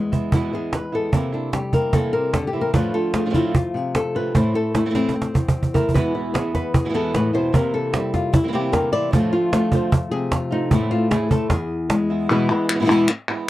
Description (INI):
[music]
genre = flamenco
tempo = 150 BPM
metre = 4/4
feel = straight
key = E phrygian dominant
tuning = A4 = 440 Hz
[part]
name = flamenco guitar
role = melody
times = 0.0-13.1 s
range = E2 to D5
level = -21 LUFS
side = left 2 dB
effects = none
[part]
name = flamenco guitar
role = stabs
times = 0.1-13.5 s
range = E2 to F4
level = -26 LUFS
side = right 5 dB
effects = none
[part]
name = cajon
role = percussion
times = 0.1-12.1 s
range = none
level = -20 LUFS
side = right 1 dB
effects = none
[part]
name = palmas hand claps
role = percussion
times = 12.3-13.5 s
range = none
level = -23 LUFS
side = left 2 dB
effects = none
[sound]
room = little or no reverb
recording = dry, close 1970s-style studio recording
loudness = -18 LUFS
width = side -15 dB against mid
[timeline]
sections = 0.0-12.3 A section; 12.3-13.5 B section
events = nylon-string guitar solo 0.0-12.3; drum fill 4.9-5.9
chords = 0.0 E; 1.1 C7; 2.7 F6; 4.3 Am; 5.9 E; 7.5 C7; 9.1 F6; 10.7 Am; 11.5 E